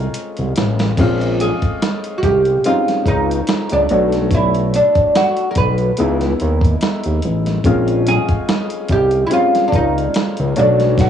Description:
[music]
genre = R&B, neo-soul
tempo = 72 BPM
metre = 4/4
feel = swing 54% on 16ths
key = unclear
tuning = A4 = 440 Hz
[part]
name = oud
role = melody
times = 0.0-11.1 s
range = D4 to B4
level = -17 LUFS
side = right 1 dB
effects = cassette tape
[part]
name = warm upright piano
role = accompaniment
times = 0.0-11.1 s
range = Ab3 to C#5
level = -20 LUFS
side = left 3 dB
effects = cassette tape
[part]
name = fat analog bass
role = bass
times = 0.0-11.1 s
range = A1 to Eb2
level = -17 LUFS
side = equal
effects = none
[part]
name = dusty soul sampler-style drum kit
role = drums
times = 0.1-11.1 s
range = crash cymbal, hi-hat, kick drum, snare drum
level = -20 LUFS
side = right 1 dB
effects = none
[sound]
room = moderate spring reverb, RT60 2.7 s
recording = home recording on cassette, small room ambience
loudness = -14 LUFS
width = side -9 dB against mid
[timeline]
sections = 1.0-11.1 A section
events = drum fill 0.0-1.0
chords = 0.0 Bbm9; 3.9 Bm9; 6.0 Dbm9; 7.6 Bbm9; 10.6 Bm9

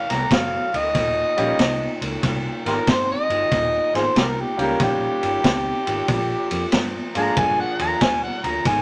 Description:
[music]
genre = electric blues shuffle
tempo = 94 BPM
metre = 4/4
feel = swing 67% on 8ths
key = Eb mixolydian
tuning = A4 = 440 Hz
[part]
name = overdriven harmonica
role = melody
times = 0.0-8.8 s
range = F4 to Bb5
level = -24 LUFS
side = equal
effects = none
[part]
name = electric guitar through a small old amp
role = riff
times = 0.0-8.8 s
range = Eb2 to G3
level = -32 LUFS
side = equal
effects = none
[part]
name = vintage muted fingered electric bass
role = bass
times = 0.1-8.8 s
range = Eb1 to Ab2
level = -33 LUFS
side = equal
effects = none
[part]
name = vintage drum kit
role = drums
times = 0.1-8.8 s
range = kick drum, ride cymbal, snare drum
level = -26 LUFS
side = equal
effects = none
[part]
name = clear baby grand piano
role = accompaniment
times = 1.4-8.0 s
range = F3 to Ab4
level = -27 LUFS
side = equal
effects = none
[sound]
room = light reverb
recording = none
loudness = -21 LUFS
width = mono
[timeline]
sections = 0.0-8.8 A section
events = harmonica solo 0.0-8.8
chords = 0.0 Am6; 1.0 Eb7; 6.1 Bb7

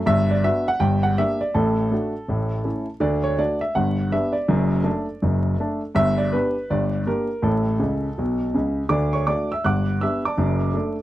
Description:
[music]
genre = jazz, stride piano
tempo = 163 BPM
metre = 4/4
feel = swing 63% on 8ths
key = D major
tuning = A4 = 441 Hz
[part]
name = clear grand piano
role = solo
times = 0.1-11.0 s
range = F#1 to F#6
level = -19 LUFS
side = equal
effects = none
[sound]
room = light reverb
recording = dry, close 1970s-style studio recording, vinyl crackle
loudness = -20 LUFS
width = side -14 dB against mid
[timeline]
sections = 0.0-8.9 A section; 8.9-11.0 A section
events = grand piano fill 7.8-8.9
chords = 0.1 Gmaj7; 0.8 Gm; 1.5 D/A; 2.3 A; 3.0 D; 3.8 Gmaj7; 4.5 D/F#; 6.0 G; 6.7 Gm; 7.4 A; 8.9 D; 9.6 Gmaj7; 10.4 D/F#

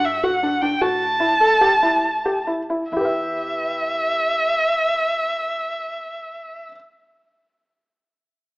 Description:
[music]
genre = contemporary instrumental, chamber music in an uneven meter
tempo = 127-161 BPM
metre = 5/4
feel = straight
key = E minor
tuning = A4 = 440 Hz
[part]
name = rich violin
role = melody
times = 0.0-6.6 s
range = E5 to A5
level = -19 LUFS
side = equal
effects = none
[part]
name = felt-muted upright piano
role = arpeggios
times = 0.0-6.8 s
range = D4 to E5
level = -22 LUFS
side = equal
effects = none
[part]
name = upright bass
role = bass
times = 0.0-6.6 s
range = E2 to A2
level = -46 LUFS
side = equal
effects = none
[sound]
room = moderate recital hall reverb, RT60 1.7 s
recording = AM radio sound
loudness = -18 LUFS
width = side -24 dB against mid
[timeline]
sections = 0.0-2.9 A section; 2.9-7.6 B section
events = slowing down 0.0-2.9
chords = 0.0 G5; 0.8 A5; 2.9 Em

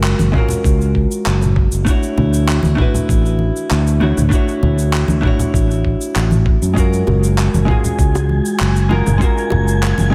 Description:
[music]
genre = sunset chillout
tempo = 98 BPM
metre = 4/4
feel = straight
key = unclear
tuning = A4 = 441 Hz
[part]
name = vintage hollow-body jazz guitar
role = accompaniment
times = 0.0-10.1 s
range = G#3 to C#5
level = -22 LUFS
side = equal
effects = analog delay
[part]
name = fingered electric bass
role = bass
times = 0.0-10.1 s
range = F#1 to F#2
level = -18 LUFS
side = equal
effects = none
[part]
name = deep house drum kit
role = drums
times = 0.0-10.1 s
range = handclaps, shaker, toms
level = -25 LUFS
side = equal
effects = none
[part]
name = congas and bongos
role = percussion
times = 0.2-10.1 s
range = none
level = -24 LUFS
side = equal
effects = none
[part]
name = electronic kick drum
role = drums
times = 0.3-10.1 s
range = none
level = -18 LUFS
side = equal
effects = none
[part]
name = wind-like tuned noise texture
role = texture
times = 7.5-10.1 s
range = G#5 to G#6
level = -30 LUFS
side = equal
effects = built-in reverb, lush chorus
[sound]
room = light reverb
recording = none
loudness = -15 LUFS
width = mono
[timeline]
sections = 0.0-10.1 A section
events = none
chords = 0.0 F#maj9; 1.9 Dmaj9; 6.8 F#maj9

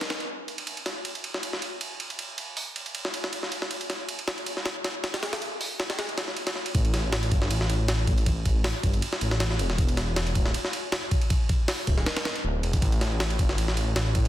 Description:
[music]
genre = drum and bass, jungle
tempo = 158 BPM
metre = 4/4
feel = swing 54% on 16ths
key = unclear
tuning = A4 = 440 Hz
[part]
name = jungle sampler-style drum kit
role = drums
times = 0.0-14.3 s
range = hi-hat, kick drum, ride cymbal, snare drum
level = -26 LUFS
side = equal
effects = high-pass filter on cymbals, high-pass filter on hats, high-pass filter on snare, high-pass filter on kick, high-pass filter on room
[part]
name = detuned saw bass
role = bass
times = 6.7-14.3 s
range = D1 to A1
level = -26 LUFS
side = equal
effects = none
[sound]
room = little or no reverb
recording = dense, heavily limited modern master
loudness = -25 LUFS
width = side -14 dB against mid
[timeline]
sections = 0.0-6.7 A section; 6.7-14.3 B section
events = drop 6.7-14.3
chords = none

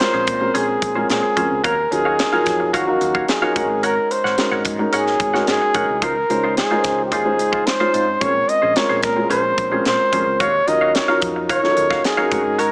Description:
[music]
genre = polished 1980s jazz-funk pop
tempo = 110 BPM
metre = 4/4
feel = straight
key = unclear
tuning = A4 = 440 Hz
[part]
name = breathy flugelhorn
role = melody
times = 0.0-12.7 s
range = Gb4 to Eb5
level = -18 LUFS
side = equal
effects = none
[part]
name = dark concert grand piano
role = accompaniment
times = 0.0-12.7 s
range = F3 to F5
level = -22 LUFS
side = equal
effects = wide subtle chorus
[part]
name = semi-hollow electric guitar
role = riff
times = 0.0-12.7 s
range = Db4 to Gb5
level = -24 LUFS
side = right 1 dB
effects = lush chorus
[part]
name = crisp fusion drum kit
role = drums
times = 0.0-12.7 s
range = hi-hat, kick drum, snare drum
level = -23 LUFS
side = equal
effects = none
[part]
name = woody fretless electric bass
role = bass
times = 0.1-12.7 s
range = Ab1 to Bb2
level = -32 LUFS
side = equal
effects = none
[sound]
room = light reverb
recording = small speaker sound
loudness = -15 LUFS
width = side -30 dB against mid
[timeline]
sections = 0.0-12.7 A section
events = none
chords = 0.0 Bbm9; 1.6 Ebm9; 3.6 Ab9sus4; 6.0 Dbmaj9; 8.2 Bbm9; 10.4 Ebm9

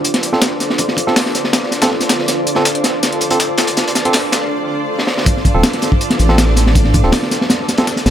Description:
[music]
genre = drum and bass, jungle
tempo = 161 BPM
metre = 4/4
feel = straight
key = D minor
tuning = A4 = 438 Hz
[part]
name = breakbeat sampler-style drum kit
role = drums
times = 0.0-8.1 s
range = hi-hat, snare drum, tambourine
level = -21 LUFS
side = left 2 dB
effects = high-pass filter on perc, high-pass filter on snare, high-pass filter on hats, high-pass filter on room
[part]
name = crunchy breakbeat drum kit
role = drums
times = 0.0-8.1 s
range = hi-hat, kick drum, snare drum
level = -15 LUFS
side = equal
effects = high-pass filter on kick, high-pass filter on hats, high-pass filter on snare, high-pass filter on room
[part]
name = barky tine electric piano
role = stabs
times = 0.3-7.9 s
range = C4 to A4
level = -21 LUFS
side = right 2 dB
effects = auto-pan, low-pass filter, dub echo
[part]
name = dark detuned saw bass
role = bass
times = 5.5-8.1 s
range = D1 to A1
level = -13 LUFS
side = equal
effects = none
[sound]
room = light reverb, small room ambience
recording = none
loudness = -12 LUFS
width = side -10 dB against mid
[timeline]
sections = 0.0-5.3 A section; 5.3-8.1 B section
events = build-up 0.0-5.3; drum fill 2.3-4.5, 5.0; break 4.5-5.3; drop 5.3-8.1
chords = 0.0 Dm7

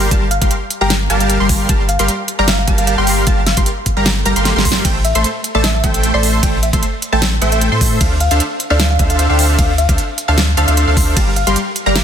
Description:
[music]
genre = future bass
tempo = 152 BPM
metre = 4/4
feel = swing 53% on 16ths, half-time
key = G dorian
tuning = A4 = 440 Hz
[part]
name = wide unison pluck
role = arpeggios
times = 0.0-12.0 s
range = F5 to C6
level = -25 LUFS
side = equal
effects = sidechain pumping, dub echo
[part]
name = dense compressed supersaw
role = riff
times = 0.0-12.0 s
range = G3 to C6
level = -18 LUFS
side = equal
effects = cassette tape, sidechain pumping
[part]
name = saturated sub bass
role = bass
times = 0.0-12.0 s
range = G1 to A2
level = -16 LUFS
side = equal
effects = tube saturation, sidechain pumping
[part]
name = electronic kick drum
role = drums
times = 0.1-11.3 s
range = none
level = -16 LUFS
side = equal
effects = small room reverb
[part]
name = pop drum kit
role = drums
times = 0.1-12.0 s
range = hi-hat, ride cymbal, snare drum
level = -19 LUFS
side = right 1 dB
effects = small room reverb
[part]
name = bell-like FM electric piano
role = melody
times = 0.3-12.0 s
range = D5 to C6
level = -22 LUFS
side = equal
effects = chorus, phaser, sidechain pumping, ping-pong delay
[part]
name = swell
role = sound effects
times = 4.2-4.8 s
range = none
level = -27 LUFS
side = left 1 dB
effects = none
[sound]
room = light reverb, digital ambience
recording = dense, heavily limited modern master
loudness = -12 LUFS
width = side -8 dB against mid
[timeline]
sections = 0.0-12.0 A section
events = swell 4.2-4.8; drum fill 4.5-4.8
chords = 0.0 Gm7; 4.8 Am7; 8.0 Dm7; 11.2 Gm7

